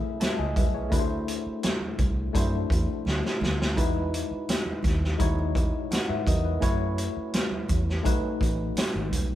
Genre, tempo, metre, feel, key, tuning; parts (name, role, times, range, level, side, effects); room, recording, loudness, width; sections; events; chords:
lush 1970s-style soul; 84 BPM; 4/4; straight; A4 = 440 Hz
tine electric piano; accompaniment; 0.0-9.3 s; G#3 to A5; -30 LUFS; left 3 dB; medium stereo tremolo
vintage drum kit; drums; 0.2-9.3 s; hi-hat, kick drum, snare drum; -27 LUFS; equal
congas; percussion; 0.2-9.3 s; -36 LUFS; right 4 dB
vintage muted fingered electric bass; bass; 0.4-9.3 s; Ab1 to G#2; -29 LUFS; equal
moderate studio reverb, RT60 0.6 s; band playing live in one room; -24 LUFS; side -13 dB against mid
0.0-9.3 A section
drum fill 3.1-3.8
0.0 Amaj7; 0.9 D9; 3.8 Emaj9; 6.6 Gbm7; 8.1 Cb9